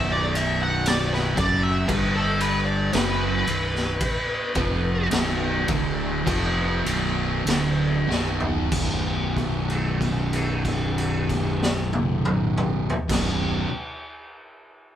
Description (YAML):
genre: stoner and doom metal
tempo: 46-59 BPM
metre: 4/4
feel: straight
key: B minor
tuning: A4 = 438 Hz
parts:
  - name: fuzz lead guitar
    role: melody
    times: 0.0-5.1 s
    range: A4 to F#5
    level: -27 LUFS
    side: equal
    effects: wah, distortion
  - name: fuzz guitar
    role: riff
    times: 0.0-13.7 s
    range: B1 to G3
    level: -26 LUFS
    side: equal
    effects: distortion
  - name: fuzz fingered electric bass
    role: bass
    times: 0.0-13.6 s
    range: B0 to G1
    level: -27 LUFS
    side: equal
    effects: overdrive
  - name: raw garage drum kit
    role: drums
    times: 0.4-13.4 s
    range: crash cymbal, kick drum, ride cymbal, snare drum, toms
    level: -25 LUFS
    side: equal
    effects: none
room: light reverb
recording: band playing live in one room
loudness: -21 LUFS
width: side -10 dB against mid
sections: 0.0-8.7 A section; 8.7-13.9 B section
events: slowing down 0.0-8.7; lead electric guitar solo 0.0-8.7; drum fill 8.1-8.7; held note 8.7-13.1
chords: 0.0 Bm; 8.7 B5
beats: 0.86 1.89 2.94 | 4.01 5.12 6.26 7.46 | 8.72 10.01 11.29 12.59